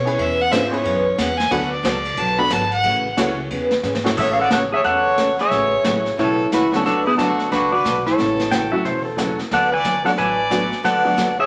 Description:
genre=country, western swing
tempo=180 BPM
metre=4/4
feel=swing 63% on 8ths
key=A major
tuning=A4 = 438 Hz
part: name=clear fiddle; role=second line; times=0.0-11.5 s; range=E4 to B5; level=-24 LUFS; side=equal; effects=none
part: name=upright bass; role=bass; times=0.0-11.4 s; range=E1 to B2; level=-34 LUFS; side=equal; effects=none
part: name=tack piano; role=accompaniment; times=0.1-11.2 s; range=F#3 to C#5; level=-27 LUFS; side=equal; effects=none
part: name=vintage brush drum kit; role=drums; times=0.1-11.5 s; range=brushed snare drum, crash cymbal, hi-hat, kick drum, ride cymbal, snare drum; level=-28 LUFS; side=equal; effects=none
part: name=picked steel-string acoustic guitar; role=accompaniment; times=0.2-11.3 s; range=C#3 to A4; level=-28 LUFS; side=equal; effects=none
part: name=clean lap steel guitar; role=melody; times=4.2-11.5 s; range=B3 to G#5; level=-21 LUFS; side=equal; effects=none
part: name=pedal steel guitar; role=second line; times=8.5-9.4 s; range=A4 to G5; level=-26 LUFS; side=equal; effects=none
room=wet studio reverb, RT60 0.9 s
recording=vinyl crackle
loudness=-19 LUFS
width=mono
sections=0.0-4.2 A section; 4.2-11.5 B section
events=fiddle solo 0.0-4.2; drum fill 3.8-4.2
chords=0.0 E6; 1.5 D6; 2.8 A6; 3.5 E6; 4.2 A6; 6.8 D6; 8.2 A6; 9.5 D6

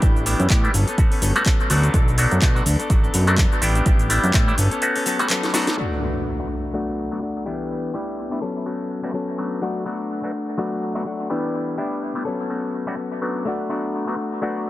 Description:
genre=filtered disco house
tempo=125 BPM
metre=4/4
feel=swing 56% on 16ths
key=B minor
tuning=A4 = 440 Hz
part: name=bright clav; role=accompaniment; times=0.0-14.7 s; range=F#3 to F#4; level=-26 LUFS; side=equal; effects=phaser, vintage 12-bit sampler grit, sidechain pumping, low-pass filter, dub echo
part: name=direct-recorded clean electric guitar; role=riff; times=0.0-14.7 s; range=E3 to A4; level=-26 LUFS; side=left 2 dB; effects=vintage 12-bit sampler grit, sidechain pumping, low-pass filter
part: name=fat analog bass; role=bass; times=0.0-4.7 s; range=G1 to B2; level=-20 LUFS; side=equal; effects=tube saturation, sidechain pumping, low-pass filter
part: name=electronic kick drum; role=drums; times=0.0-4.5 s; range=none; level=-19 LUFS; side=equal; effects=none
part: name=house drum kit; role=drums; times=0.0-5.9 s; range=crash cymbal, handclaps, hi-hat, shaker, snare drum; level=-25 LUFS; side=equal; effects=overdrive, sidechain pumping on hats, low-pass filter on hats, sidechain pumping on perc, low-pass filter on perc, low-pass filter on snare, sidechain pumping on cymbals, low-pass filter on cymbals, low-pass filter on room
part: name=impact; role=sound effects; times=5.8-7.7 s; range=none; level=-29 LUFS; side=right 1 dB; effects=none
room=light reverb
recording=echo-heavy mix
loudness=-19 LUFS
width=side -15 dB against mid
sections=0.0-5.8 A section; 5.8-14.7 B section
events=filter sweep 0.0-5.8, 5.8-14.7; break 4.8-5.8; drum fill 5.4-5.8; impact 5.8-7.7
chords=0.0 A9sus4; 0.7 Gmaj9#11; 1.9 Bm7; 3.6 A9sus4; 4.6 Gmaj9#11; 5.8 Bm7; 7.5 A9sus4; 8.4 Gmaj9#11 (rootless); 9.6 Bm7; 11.3 A9sus4; 12.3 Gmaj9#11 (rootless); 13.5 Bm7

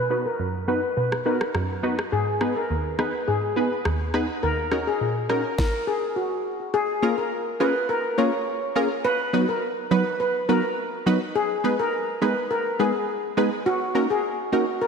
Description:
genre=dancehall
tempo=104 BPM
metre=4/4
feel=straight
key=Bb phrygian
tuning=A4 = 440 Hz
part: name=steel pan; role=melody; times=0.0-14.9 s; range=Gb4 to Db5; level=-25 LUFS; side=left 1 dB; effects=low-pass filter, ping-pong delay
part: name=punchy chord stab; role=accompaniment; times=0.0-14.7 s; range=Eb2 to B4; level=-24 LUFS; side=equal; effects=chorus, sidechain pumping, low-pass filter
part: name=afro-pop drum kit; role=drums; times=1.1-5.7 s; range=kick drum, rim click, snare drum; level=-31 LUFS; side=equal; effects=none
room=wet lush hall reverb, RT60 2.5 s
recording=dreamy mix soaked in reverb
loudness=-22 LUFS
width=side -5 dB against mid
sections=0.0-6.7 A section; 6.7-14.9 B section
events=filter sweep 0.0-6.7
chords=0.0 B; 2.1 Abm; 4.4 Ebm7; 6.7 Bbm7; 9.0 B; 11.4 Abm; 13.7 Ebm7

